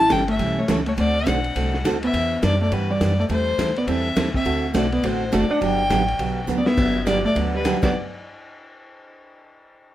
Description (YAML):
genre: country, western swing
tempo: 207 BPM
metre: 4/4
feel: swing 61% on 8ths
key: G major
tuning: A4 = 440 Hz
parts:
  - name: clear fiddle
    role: melody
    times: 0.0-7.9 s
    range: B4 to A5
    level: -24 LUFS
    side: left 1 dB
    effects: none
  - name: vintage hollow-body jazz guitar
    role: second line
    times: 0.0-7.9 s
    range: G3 to E4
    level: -24 LUFS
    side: equal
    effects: none
  - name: upright bass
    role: bass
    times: 0.0-7.9 s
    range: F#1 to G2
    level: -26 LUFS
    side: left 1 dB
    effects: none
  - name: picked steel-string acoustic guitar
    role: accompaniment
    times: 0.1-7.9 s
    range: G2 to A4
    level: -25 LUFS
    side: right 3 dB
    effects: none
  - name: vintage drum kit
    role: drums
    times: 0.1-7.9 s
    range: crash cymbal, hi-hat, kick drum, ride cymbal, snare drum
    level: -28 LUFS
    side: left 1 dB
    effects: none
room: moderate club reverb, RT60 0.6 s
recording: none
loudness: -18 LUFS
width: side -13 dB against mid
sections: 0.0-6.8 A section; 6.8-7.9 B section; 7.9-9.1 C section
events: drum fill 6.5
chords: 0.0 A7; 1.0 D7; 2.1 Em9; 3.3 Am7; 4.5 D7; 5.6 Gmaj7; 7.9 N.C.